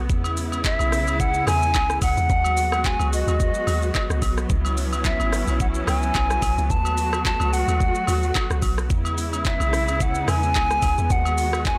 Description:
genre	amapiano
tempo	109 BPM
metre	4/4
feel	swing 55% on 16ths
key	unclear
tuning	A4 = 439 Hz
part	clear studio string section	sustained chords	0.0-11.8 s	C#3 to F#4	-30 LUFS	equal	sidechain pumping
part	deep log drum bass	bass	0.0-11.8 s	G#1 to E2	-26 LUFS	equal	none
part	smooth R&B drum kit	drums	0.1-11.8 s	handclaps, hi-hat, kick drum, rim click, shaker	-28 LUFS	equal	none
part	agogo bells	percussion	0.2-11.6 s	none	-34 LUFS	equal	none
part	hollow concert flute	melody	0.7-11.8 s	D#5 to A5	-27 LUFS	equal	tape echo
room	studio ambience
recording	dry, gritty hardware recording, transformer saturation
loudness	-22 LUFS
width	mono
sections	0.0-11.8 A section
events	none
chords	0.1 E6; 2.3 G#m7; 4.5 C#m7; 6.7 B7; 8.9 E6; 11.1 G#m7

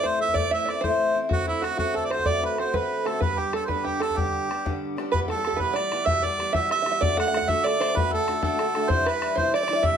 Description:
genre	celtic folk, Celtic slide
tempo	127 BPM (dotted quarters)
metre	12/8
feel	straight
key	G major, E minor from 5.1 s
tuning	A4 = 438 Hz
part	warm harmonica	melody	0.0-10.0 s	E4 to F#5	-26 LUFS	right 3 dB	none
part	open-back banjo	second line	0.0-10.0 s	E4 to F#5	-29 LUFS	right 5 dB	slapback echo
part	picked old ladder-braced acoustic guitar	accompaniment	0.0-10.0 s	E2 to G4	-27 LUFS	left 2 dB	none
part	bodhran	percussion	0.0-9.9 s	none	-30 LUFS	left 3 dB	none
room	moderate studio reverb, RT60 0.6 s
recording	none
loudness	-22 LUFS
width	side -8 dB against mid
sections	0.0-5.1 A section; 5.1-10.0 B section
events	none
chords	0.0 Am; 1.3 D7; 3.2 G; 5.1 Em; 7.0 D; 8.9 Cadd9

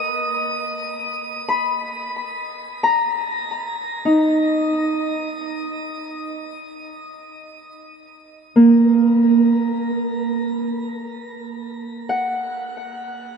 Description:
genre	ambient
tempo	free time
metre	none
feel	none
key	unclear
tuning	A4 = 440 Hz
part	Celtic harp	solo	0.0-13.4 s	A#3 to B5	-18 LUFS	right 1 dB	ping-pong delay
room	wet shimmer reverb, RT60 7.2 s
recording	nothing above 10.6 kHz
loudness	-18 LUFS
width	side -6 dB against mid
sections	0.0-3.6 A section; 3.6-13.4 B section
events	none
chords	0.0 N.C.; 3.6 A#sus4; 10.8 D#m (rootless)

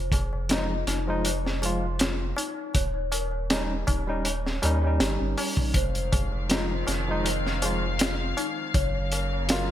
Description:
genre	trip hop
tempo	80 BPM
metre	4/4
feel	swing 54% on 16ths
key	F minor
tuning	A4 = 440 Hz
part	small celesta	arpeggios	0.0-9.7 s	Eb4 to Db5	-35 LUFS	left 4 dB	wide subtle chorus, tape echo
part	soft dub sub bass	bass	0.0-9.7 s	Eb1 to Eb2	-29 LUFS	equal	none
part	crunchy breakbeat drum kit	drums	0.1-9.7 s	hi-hat, kick drum, snare drum	-27 LUFS	equal	none
part	tabla	percussion	0.1-9.7 s	none	-38 LUFS	left 1 dB	none
part	barky tine electric piano	accompaniment	0.5-9.7 s	F3 to F4	-31 LUFS	equal	overdrive, harmonic tremolo, tape echo
part	dark studio string section	sustained chords	5.7-9.7 s	Db3 to F5	-32 LUFS	left 2 dB	none
room	moderate lush hall reverb, RT60 1.9 s, small room reverb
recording	bright 1980s-style digital production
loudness	-24 LUFS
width	side -12 dB against mid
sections	0.0-9.7 A section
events	none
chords	0.0 Fm7; 2.7 Eb7; 5.7 Fm7; 8.7 Gbmaj7

